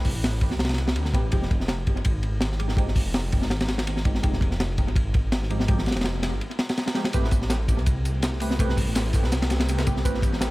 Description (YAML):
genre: drum and bass, jungle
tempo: 165 BPM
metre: 4/4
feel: swing 55% on 16ths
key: unclear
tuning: A4 = 440 Hz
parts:
  - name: detuned saw bass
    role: bass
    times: 0.0-10.5 s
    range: F1 to D2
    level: -26 LUFS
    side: equal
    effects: tube saturation
  - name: crunchy breakbeat drum kit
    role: drums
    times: 0.0-10.5 s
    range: hi-hat, kick drum, ride cymbal, snare drum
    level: -24 LUFS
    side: equal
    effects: analog delay
  - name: deep mellow chord stab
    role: stabs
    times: 1.1-10.2 s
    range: F3 to B4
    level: -34 LUFS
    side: right 2 dB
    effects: chorus, dub echo
  - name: soft string machine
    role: sustained chords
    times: 7.1-10.5 s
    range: A3 to G4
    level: -35 LUFS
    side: equal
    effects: ensemble chorus
  - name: breakbeat sampler-style drum kit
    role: drums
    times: 7.1-10.5 s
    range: hi-hat, snare drum, tambourine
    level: -37 LUFS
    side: left 1 dB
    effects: high-pass filter on perc, high-pass filter on snare, high-pass filter on hats
room: small room ambience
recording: echo-heavy mix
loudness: -22 LUFS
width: side -19 dB against mid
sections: 0.0-10.5 A section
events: break 6.4-7.1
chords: 0.0 Am9; 1.3 Fm9; 7.1 Am9